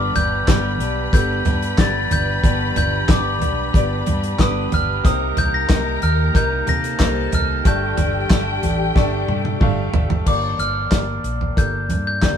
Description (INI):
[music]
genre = piano-driven pop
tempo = 92 BPM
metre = 4/4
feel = straight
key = unclear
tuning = A4 = 440 Hz
[part]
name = glockenspiel with soft plastic mallets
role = melody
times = 0.0-12.4 s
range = D6 to Bb6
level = -24 LUFS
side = equal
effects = none
[part]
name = warm studio violin section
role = second line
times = 0.0-10.2 s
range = G4 to B5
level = -28 LUFS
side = left 2 dB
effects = none
[part]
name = bright upright piano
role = accompaniment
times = 0.0-12.4 s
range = G2 to F5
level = -26 LUFS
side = left 6 dB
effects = none
[part]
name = twelve-string electric guitar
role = riff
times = 0.0-10.3 s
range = G2 to A4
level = -28 LUFS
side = right 6 dB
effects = none
[part]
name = vintage muted fingered electric bass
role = bass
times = 0.0-12.4 s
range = G1 to C3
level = -23 LUFS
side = equal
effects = none
[part]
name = damped 70s drum kit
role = drums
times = 0.2-12.4 s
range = crash cymbal, handclaps, hi-hat, kick drum, snare drum, toms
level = -18 LUFS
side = equal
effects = none
[sound]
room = moderate studio reverb, RT60 0.6 s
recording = band playing live in one room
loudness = -16 LUFS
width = side -8 dB against mid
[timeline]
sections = 0.0-10.3 A section; 10.3-12.4 B section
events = drum fill 9.0-10.3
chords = 0.0 G; 5.0 Cm7; 7.7 Gsus2; 10.3 Gm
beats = 0.48 1.13 1.78 | 2.44 3.09 3.74 4.39 | 5.05 5.70 6.35 7.00 | 7.66 8.31 8.96 9.61 | 10.27 10.92 11.57 12.22